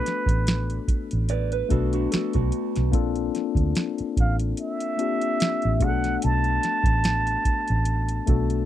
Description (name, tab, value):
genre	R&B, neo-soul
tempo	73 BPM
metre	4/4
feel	swing 55% on 16ths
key	unclear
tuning	A4 = 440 Hz
part	trumpet with plunger mute	melody	0.0-8.7 s	B4 to A5	-27 LUFS	right 3 dB	none
part	mellow tine electric piano	accompaniment	0.0-8.7 s	A3 to B4	-28 LUFS	moving between left 14 dB and left 7 dB	auto-pan
part	soft vintage rhythm box	drums	0.1-8.7 s	hi-hat, kick drum, snare drum	-25 LUFS	right 1 dB	overdrive
part	vintage muted fingered electric bass	bass	0.3-8.6 s	A1 to D2	-24 LUFS	right 1 dB	none
part	electric guitar through a small old amp	second line	1.3-2.9 s	D4 to D5	-29 LUFS	right 14 dB	none
room	little or no reverb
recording	dry, close 1970s-style studio recording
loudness	-21 LUFS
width	side -12 dB against mid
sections	0.0-8.7 A section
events	none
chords	0.0 Bm7; 2.9 Bbmaj9; 5.8 Bm7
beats	0.46 1.28 2.11 | 2.93 3.75 4.57 5.39 | 6.22 7.04 7.86